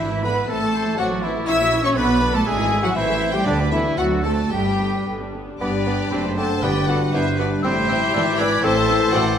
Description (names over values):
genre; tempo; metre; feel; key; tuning
quick classical-period movement for symphony orchestra; 120 BPM; 2/4; rubato; G major; A4 = 439 Hz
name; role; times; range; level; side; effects
rich chamber violin section; melody; 0.0-9.4 s; D5 to E6; -27 LUFS; left 4 dB; none
mellow hollow small flute group; second line; 0.0-9.2 s; D5 to E6; -29 LUFS; left 2 dB; none
rich chamber violin section; second line; 0.0-9.2 s; D4 to E5; -29 LUFS; left 3 dB; none
warm clarinet; second line; 0.0-9.2 s; D4 to E5; -28 LUFS; left 2 dB; none
warm oboe; second line; 0.0-9.4 s; A4 to G#5; -28 LUFS; right 2 dB; none
warm symphonic viola section; accompaniment; 0.0-9.2 s; D3 to E4; -30 LUFS; right 1 dB; none
mellow French horn section; sustained chords; 0.0-9.4 s; D3 to E4; -26 LUFS; left 3 dB; none
clear trumpet; stabs; 0.0-9.4 s; D4 to E5; -28 LUFS; right 2 dB; none
dark chamber double bass section; bass; 0.0-9.4 s; F#1 to D2; -27 LUFS; right 3 dB; none
rich chamber cello section; bass; 0.0-9.4 s; F#2 to E4; -26 LUFS; right 2 dB; none
timpani; percussion; 3.5-3.9, 6.6-7.3 s; G2 to D3; -28 LUFS; equal; none
clear bassoon; accompaniment; 5.6-9.2 s; B3 to D4; -29 LUFS; right 2 dB; none
room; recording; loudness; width
wet scoring stage reverb, RT60 1.6 s; none; -17 LUFS; side -8 dB against mid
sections
0.0-5.6 A section; 5.6-9.4 B section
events
none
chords
0.0 E7/G#; 0.5 Am; 1.5 F#7/A#; 2.0 Bm; 2.5 E7/G#; 3.0 Am7; 3.5 G/D; 4.0 D7; 4.5 G; 6.1 D7/F#; 6.6 G; 7.6 Am7; 8.1 E7/G#; 8.6 Am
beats
| 0.49 0.98 | 1.47 1.96 | 2.46 2.96 | 3.46 3.98 | 4.52 5.07 | 5.61 6.11 | 6.62 7.13 | 7.63 8.14 | 8.63 9.13